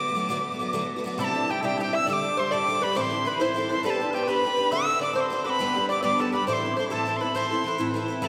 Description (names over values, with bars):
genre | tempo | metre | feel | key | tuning
celtic folk, Celtic slide | 136 BPM (dotted quarters) | 12/8 | straight | D mixolydian | A4 = 440 Hz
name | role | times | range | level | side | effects
bright reedy mid whistle | melody | 0.0-8.3 s | G5 to E6 | -29 LUFS | equal | none
mellow small bagpipes | second line | 0.0-8.3 s | G4 to F#5 | -35 LUFS | equal | none
picked twelve-string acoustic guitar | accompaniment | 0.0-8.3 s | G2 to B4 | -30 LUFS | equal | none
open-back banjo | second line | 1.2-8.3 s | G4 to E5 | -34 LUFS | equal | none
room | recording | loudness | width
wet church reverb, RT60 3.4 s | recorded in a church or concert hall | -25 LUFS | mono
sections
0.0-1.2 A section; 1.2-8.3 B section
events
none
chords
0.0 D6; 1.2 Cadd9; 2.1 Dsus4; 3.0 Am; 3.8 G/B; 4.7 D7; 5.6 G; 6.5 Am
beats
0.31 0.75 | 1.20 1.64 2.08 2.52 | 2.96 3.40 3.84 4.28 | 4.72 5.16 5.60 6.04 | 6.47 6.91 7.35 7.79 | 8.23